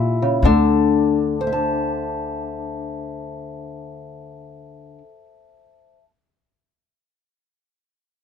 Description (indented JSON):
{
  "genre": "acoustic country blues, solo or duo",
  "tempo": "free time",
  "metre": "none",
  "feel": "none",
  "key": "unclear",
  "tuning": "A4 = 441 Hz",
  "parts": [
    { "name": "fingerpicked old ladder-braced acoustic guitar", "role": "melody", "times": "0.0-6.1 s", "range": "Bb2 to A5", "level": "-21 LUFS", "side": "left 4 dB", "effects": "none" },
    { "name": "upright bass", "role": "bass", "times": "0.0-5.0 s", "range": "D2 to Bb2", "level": "-21 LUFS", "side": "left 1 dB", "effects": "none" }
  ],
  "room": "moderate booth ambience, RT60 0.2 s",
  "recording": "minimal, uncompressed stereo recording",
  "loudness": "-18 LUFS",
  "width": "side -7 dB against mid",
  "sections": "0.4-5.2 A section",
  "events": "none",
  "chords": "0.4 Dsus2"
}